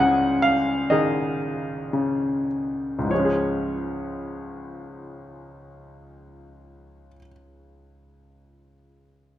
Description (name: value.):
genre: classical, lyrical solo piano.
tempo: 47-69 BPM.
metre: 4/4.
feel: rubato.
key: Db major.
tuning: A4 = 438 Hz.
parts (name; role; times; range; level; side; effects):
bright grand piano; solo; 0.0-9.4 s; Db2 to Ab5; -22 LUFS; left 1 dB; none.
room: moderate recital hall reverb, RT60 1.5 s.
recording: minimal, uncompressed stereo recording.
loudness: -22 LUFS.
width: side -12 dB against mid.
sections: 0.0-3.1 A section; 3.1-8.0 B section.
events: slowing down 0.0-3.1.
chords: 0.0 Dbsus2; 3.1 Db.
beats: 0.00 0.91 1.94 | 3.11 4.35 5.53 6.72.